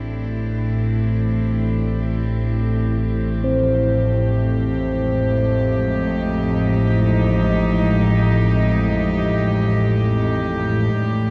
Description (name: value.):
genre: dark ambient drone.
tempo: free time.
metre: none.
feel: none.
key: unclear.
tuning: A4 = 441 Hz.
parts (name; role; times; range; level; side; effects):
warm symphonic cello section; sustained chords; 0.0-11.3 s; F2 to G4; -24 LUFS; equal; none.
dark detuned synth bell; arpeggios; 0.0-3.5 s; D4 to A4; -47 LUFS; equal; none.
organ-like drone; drone; 0.0-11.3 s; A1 to A2; -22 LUFS; equal; ensemble chorus, built-in reverb.
bronze singing bowl; texture; 3.4-11.3 s; C4 to D5; -27 LUFS; equal; none.
room: wet cathedral reverb, RT60 6.1 s.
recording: dark, warm production.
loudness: -19 LUFS.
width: mono.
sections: 0.0-10.9 A section.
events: fade-in on cello section 0.0-10.9; filter sweep on synth drone 0.0-10.9.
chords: 0.0 Am7; 3.4 Fm7.